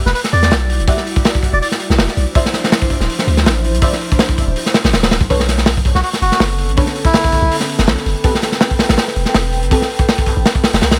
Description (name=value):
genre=drum and bass, jungle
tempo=163 BPM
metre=4/4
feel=swing 54% on 16ths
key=E minor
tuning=A4 = 438 Hz
part: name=melodica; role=melody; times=0.1-1.7, 6.0-7.6 s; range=E4 to D5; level=-22 LUFS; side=equal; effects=dub echo
part: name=long sustained 808-style bass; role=bass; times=0.1-11.0 s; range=D1 to E2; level=-19 LUFS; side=equal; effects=none
part: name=crunchy breakbeat drum kit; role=drums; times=0.1-11.0 s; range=hi-hat, kick drum, snare drum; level=-17 LUFS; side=equal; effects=none
part: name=airy breathy pad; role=sustained chords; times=0.3-10.6 s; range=D3 to G5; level=-26 LUFS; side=equal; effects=chorus
part: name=deep mellow chord stab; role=stabs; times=0.9-9.8 s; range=C4 to F#5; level=-25 LUFS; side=equal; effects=chorus, phaser, dub echo
room=light reverb, small room ambience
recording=none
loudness=-15 LUFS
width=mono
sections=0.0-11.0 A section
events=none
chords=0.0 Em9; 2.4 Dm9; 5.3 Bm9; 8.2 Am9